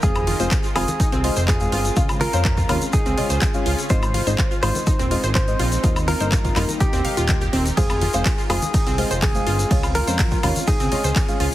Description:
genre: progressive house.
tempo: 124 BPM.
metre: 4/4.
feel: straight.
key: F minor.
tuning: A4 = 439 Hz.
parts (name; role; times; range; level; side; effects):
direct-recorded clean electric guitar; melody; 0.0-11.5 s; G4 to C5; -27 LUFS; equal; tape echo.
soft round pluck; second line; 0.0-11.5 s; G4 to C5; -34 LUFS; right 1 dB; none.
shimmering ambient pad; sustained chords; 0.0-11.5 s; Db3 to Bb4; -31 LUFS; equal; chorus, built-in reverb, sidechain pumping.
wide unison pluck; arpeggios; 0.0-11.5 s; C4 to F5; -28 LUFS; right 1 dB; sidechain pumping, tape echo.
deep mellow chord stab; stabs; 0.0-11.4 s; G3 to G5; -28 LUFS; left 2 dB; chorus, vintage 12-bit sampler grit, sidechain pumping, tape echo.
fat analog bass; bass; 0.0-11.5 s; Eb1 to F2; -23 LUFS; equal; sidechain pumping.
electronic kick drum; drums; 0.0-11.3 s; none; -21 LUFS; equal; none.
house drum kit; drums; 0.0-11.5 s; handclaps, hi-hat, ride cymbal, woodblock; -28 LUFS; left 1 dB; none.
egg shaker; percussion; 0.0-11.4 s; none; -32 LUFS; left 2 dB; none.
congas and bongos; percussion; 0.3-11.3 s; none; -31 LUFS; left 2 dB; none.
room: little or no reverb.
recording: heavily compressed radio sound.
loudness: -17 LUFS.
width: side -14 dB against mid.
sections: 0.0-11.5 A section.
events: none.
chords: 0.0 Fm; 2.0 Db; 3.9 Ab; 5.8 Eb; 7.8 Fm; 9.7 Db.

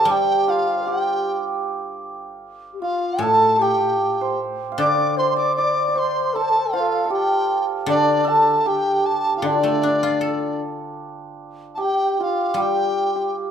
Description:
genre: chinese traditional, Chinese chamber ensemble.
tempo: 77 BPM.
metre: 2/4.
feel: straight.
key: D yu mode.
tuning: A4 = 441 Hz.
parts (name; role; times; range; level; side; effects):
mellow hollow large dizi; melody; 0.0-13.4 s; D5 to D6; -21 LUFS; right 1 dB; none.
hammered dulcimer; second line; 0.0-13.5 s; D4 to F5; -23 LUFS; right 4 dB; none.
xiao; second line; 0.0-13.3 s; D4 to G5; -25 LUFS; left 4 dB; none.
guzheng; accompaniment; 0.0-13.5 s; A2 to A4; -27 LUFS; left 6 dB; none.
room: moderate recital hall reverb, RT60 1.4 s.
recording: minimal, uncompressed stereo recording, faint mains hum.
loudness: -18 LUFS.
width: side -8 dB against mid.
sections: 0.0-11.0 A section; 11.0-13.5 B section.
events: none.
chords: none.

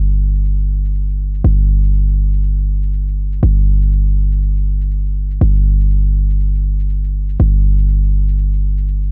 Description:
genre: afro house.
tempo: 121 BPM.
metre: 4/4.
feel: swing 59% on 16ths.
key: unclear.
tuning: A4 = 440 Hz.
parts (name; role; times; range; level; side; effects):
warm 808-style bass; bass; 0.0-9.1 s; G1; -16 LUFS; equal; tube saturation.
shaker; drums; 0.1-9.1 s; none; -63 LUFS; equal; low-pass filter on perc, studio reverb.
room: little or no reverb.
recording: none.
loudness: -16 LUFS.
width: mono.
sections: 0.0-9.1 A section.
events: none.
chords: none.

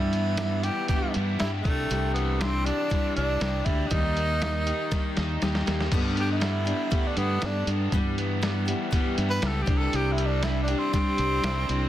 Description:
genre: folk rock and heartland rock.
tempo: 120 BPM.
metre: 4/4.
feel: straight.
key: G major.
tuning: A4 = 441 Hz.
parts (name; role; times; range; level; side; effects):
breathy tenor saxophone; melody; 0.0-11.9 s; A3 to B4; -30 LUFS; right 1 dB; digital delay.
picked steel-string acoustic guitar; accompaniment; 0.0-11.9 s; G2 to G4; -31 LUFS; left 4 dB; none.
overdriven electric guitar; riff; 0.0-11.9 s; C3 to A4; -33 LUFS; right 1 dB; none.
modern bright fingered electric bass; bass; 0.0-11.9 s; C2 to G2; -28 LUFS; equal; none.
lo-fi sampler-style drum kit; drums; 0.1-11.8 s; crash cymbal, hi-hat, kick drum, snare drum; -29 LUFS; equal; none.
room: light reverb.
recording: dense, heavily limited modern master.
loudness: -23 LUFS.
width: side -12 dB against mid.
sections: 0.0-5.9 A section; 5.9-11.9 B section.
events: drum fill 4.9-5.9; tenor saxophone solo 5.9-11.9.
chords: 0.0 Em/G; 1.6 Cadd9; 3.9 Eb; 5.9 Gadd9; 7.9 Em/G; 9.7 Cadd9.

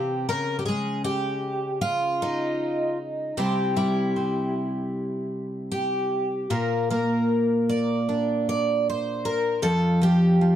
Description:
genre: folk, solo fingerstyle acoustic guitar.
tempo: 78 BPM.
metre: 4/4.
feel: rubato.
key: unclear.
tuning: A4 = 440 Hz.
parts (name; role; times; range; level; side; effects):
picked twelve-string acoustic guitar; solo; 0.0-10.6 s; F2 to D5; -22 LUFS; equal; none.
room: light reverb.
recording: dark, warm production.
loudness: -22 LUFS.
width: side -10 dB against mid.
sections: 0.0-10.6 A section.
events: none.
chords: 0.3 Dbsus2; 3.4 C; 6.5 Bb; 9.6 N.C..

